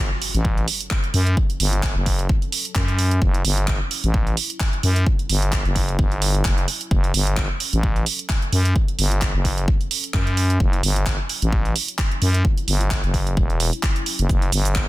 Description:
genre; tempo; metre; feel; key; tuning
bass house; 130 BPM; 4/4; swing 56% on 16ths; F# phrygian; A4 = 440 Hz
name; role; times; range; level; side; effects
sweeping resonant pad; sustained chords; 0.0-14.9 s; F#3 to A4; -42 LUFS; left 3 dB; none
growling FM bass; bass; 0.0-14.9 s; E1 to F#2; -20 LUFS; equal; sidechain pumping
impact; sound effects; 0.0-1.4 s; none; -37 LUFS; equal; none
house drum kit; drums; 0.2-14.9 s; handclaps, hi-hat, shaker; -25 LUFS; right 3 dB; soft clipping on snare
electronic kick drum; drums; 0.4-14.9 s; none; -21 LUFS; equal; none
room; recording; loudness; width
little or no reverb; dense, heavily limited modern master; -18 LUFS; side -17 dB against mid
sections
0.0-14.9 A section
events
impact 0.0-1.4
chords
0.0 F#m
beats
0.45 0.91 | 1.37 1.83 2.29 2.76 | 3.22 3.68 4.14 4.60 | 5.06 5.53 5.99 6.45 | 6.91 7.37 7.83 8.29 | 8.76 9.22 9.68 10.14 | 10.60 11.06 11.53 11.99 | 12.45 12.91 13.37 13.83 | 14.29 14.76

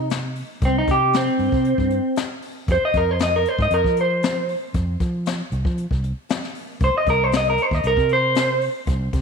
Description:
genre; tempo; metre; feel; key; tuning
straight-eighth soul blues; 116 BPM; 4/4; straight; C minor; A4 = 439 Hz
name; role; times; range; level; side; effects
electric guitar through a small old amp; melody; 0.0-8.6 s; C4 to Eb5; -19 LUFS; right 1 dB; none
fingered electric bass; bass; 0.0-9.2 s; C2 to F3; -24 LUFS; right 1 dB; none
jazz brush drum kit; drums; 0.1-9.2 s; hi-hat, kick drum, snare drum; -25 LUFS; left 2 dB; none
room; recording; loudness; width
light reverb, small room ambience; 1960s-style stereo; -18 LUFS; side -5 dB against mid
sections
0.0-9.2 A section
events
clean electric guitar solo 0.0-9.2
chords
0.0 N.C.; 6.8 C7(no3)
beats
0.10 | 0.62 1.13 1.65 2.17 | 2.68 3.20 3.71 4.23 | 4.75 5.26 5.78 6.29 | 6.81 7.33 7.84 8.36 | 8.87

